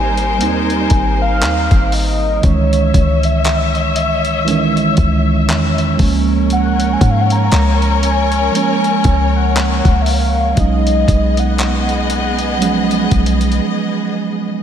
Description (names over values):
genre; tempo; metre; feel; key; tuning
contemporary R&B; 59 BPM; 4/4; swing 58% on 16ths; unclear; A4 = 439 Hz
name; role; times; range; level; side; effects
warm velvety synth lead; melody; 0.0-13.4 s; Db5 to Bb5; -20 LUFS; left 1 dB; chorus, analog delay
mellow tine electric piano; accompaniment; 0.0-14.6 s; Eb3 to Eb4; -18 LUFS; right 6 dB; none
warm studio string section; sustained chords; 0.0-14.6 s; G3 to Fb5; -21 LUFS; left 4 dB; none
warm 808-style bass; bass; 0.0-13.6 s; Ab1 to Ab2; -16 LUFS; left 1 dB; none
dusty soul sampler-style drum kit; drums; 0.2-13.6 s; handclaps, hi-hat, kick drum; -18 LUFS; left 1 dB; none
room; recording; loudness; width
moderate lush hall reverb, RT60 2.6 s; dreamy mix soaked in reverb; -12 LUFS; side -9 dB against mid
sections
0.0-14.6 A section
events
break 13.6-14.6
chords
0.0 Abmaj9; 2.4 Dbmadd9; 6.0 Db6; 10.6 B6